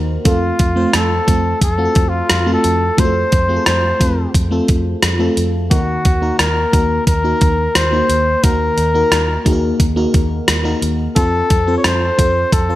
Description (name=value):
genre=1980s-style pop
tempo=88 BPM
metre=4/4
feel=straight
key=unclear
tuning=A4 = 440 Hz
part: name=FM electric piano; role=accompaniment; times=0.0-12.8 s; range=Eb3 to A5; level=-19 LUFS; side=equal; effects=chorus, phaser
part: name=vintage muted fingered electric bass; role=bass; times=0.0-12.8 s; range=Eb2 to F2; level=-20 LUFS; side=equal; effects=none
part: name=warm flugelhorn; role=melody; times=0.3-12.8 s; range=F4 to Db5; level=-17 LUFS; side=left 1 dB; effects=none
part: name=clean 12-bit digital drum machine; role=drums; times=0.3-12.7 s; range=hi-hat, kick drum, rim click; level=-15 LUFS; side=equal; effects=overdrive, gated reverb
room=light reverb, digital ambience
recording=none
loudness=-13 LUFS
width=side -15 dB against mid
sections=0.0-12.8 A section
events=none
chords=0.3 F; 5.7 Ebm; 11.2 F